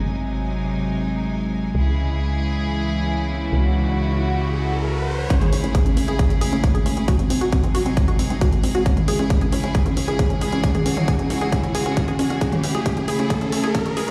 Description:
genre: uplifting trance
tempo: 135 BPM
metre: 4/4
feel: straight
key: C# harmonic minor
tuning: A4 = 439 Hz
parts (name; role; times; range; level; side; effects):
- rich chamber string section; sustained chords; 0.0-14.1 s; B#2 to G#5; -27 LUFS; equal; sidechain pumping, low-pass filter
- tight sequencer bass; bass; 0.0-14.1 s; E1 to C#2; -29 LUFS; equal; sidechain pumping, high-pass filter
- riser; sound effects; 3.2-14.1 s; none; -35 LUFS; equal; none
- analog pluck; arpeggios; 5.3-14.1 s; B#3 to G#4; -27 LUFS; equal; chorus, sidechain pumping, digital delay
- big-room dance drum kit; drums; 5.3-14.1 s; hi-hat, toms; -31 LUFS; equal; overdrive
- electronic kick drum; drums; 5.3-13.8 s; none; -22 LUFS; equal; overdrive
room: light reverb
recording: played on a big sound system in a bare room, large studio reverb, high-pass filter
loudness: -21 LUFS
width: mono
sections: 0.0-5.3 A section; 5.3-14.1 B section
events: riser 3.2-5.3, 5.3-14.1; build-up 5.3-14.1; filter sweep on synth pluck 5.3-14.1; filter sweep 5.3-14.1; drum fill 12.4-14.1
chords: 0.0 G#7; 1.7 C#m; 5.3 Amaj7; 7.1 G#7; 8.9 C#m; 12.4 Amaj7

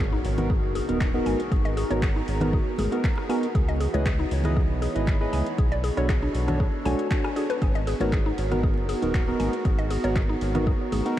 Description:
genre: deep house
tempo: 118 BPM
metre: 4/4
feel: swing 53% on 16ths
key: G# minor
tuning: A4 = 440 Hz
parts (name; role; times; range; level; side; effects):
- hollow soft pad; sustained chords; 0.1-11.2 s; B3 to C#5; -34 LUFS; right 2 dB; chorus, sidechain pumping
- mallet-like synth pluck; arpeggios; 0.0-11.0 s; D4 to G#5; -33 LUFS; left 2 dB; chorus, sidechain pumping, ping-pong delay
- percussive organ stab; stabs; 0.0-11.2 s; B3 to D#5; -29 LUFS; right 1 dB; chorus, sidechain pumping, ping-pong delay
- round analog bass; bass; 0.0-11.0 s; D#1 to C#2; -28 LUFS; equal; tube saturation, sidechain pumping
- impact; sound effects; 0.1-1.5 s; none; -38 LUFS; equal; none
- warbly tape-like pad; texture; 0.0-11.2 s; E3 to C#6; -35 LUFS; right 1 dB; chorus, built-in reverb, phaser, sidechain pumping
- deep house drum kit; drums; 0.2-11.2 s; handclaps, hi-hat, ride cymbal, rim click; -37 LUFS; equal; studio reverb
- congas; percussion; 0.4-11.0 s; none; -34 LUFS; left 2 dB; none
- electronic kick drum; drums; 0.5-10.8 s; none; -24 LUFS; equal; overdrive, studio reverb
room: moderate huge ambient reverb, RT60 7.8 s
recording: dreamy mix soaked in reverb, vinyl crackle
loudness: -22 LUFS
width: side -13 dB against mid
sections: 0.0-11.2 A section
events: impact 0.0-1.5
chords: 0.0 G#m9; 3.5 C#m9; 5.6 Bm9; 7.6 G#m9

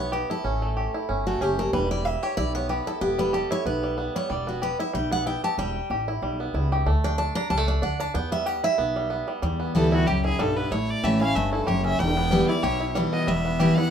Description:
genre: bluegrass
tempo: 187 BPM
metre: 4/4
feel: swing 55% on 8ths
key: E dorian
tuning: A4 = 437 Hz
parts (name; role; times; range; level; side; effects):
- picked steel-string acoustic guitar; accompaniment; 0.0-13.9 s; E2 to A#5; -25 LUFS; equal; none
- bluegrass banjo; arpeggios; 0.0-13.9 s; G3 to G4; -28 LUFS; right 1 dB; none
- upright bass; bass; 0.0-13.7 s; E1 to E2; -28 LUFS; equal; none
- clear fiddle; melody; 9.8-13.9 s; F#4 to G5; -28 LUFS; equal; none
room: moderate studio ambience, RT60 0.5 s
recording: minimal, uncompressed stereo recording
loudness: -22 LUFS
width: side -8 dB against mid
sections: 0.0-9.4 A section; 9.4-13.9 B section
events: steel-string acoustic guitar solo 0.0-9.4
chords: 0.5 A; 1.7 Em; 6.9 D5; 8.1 Em; 10.7 A; 12.0 Em

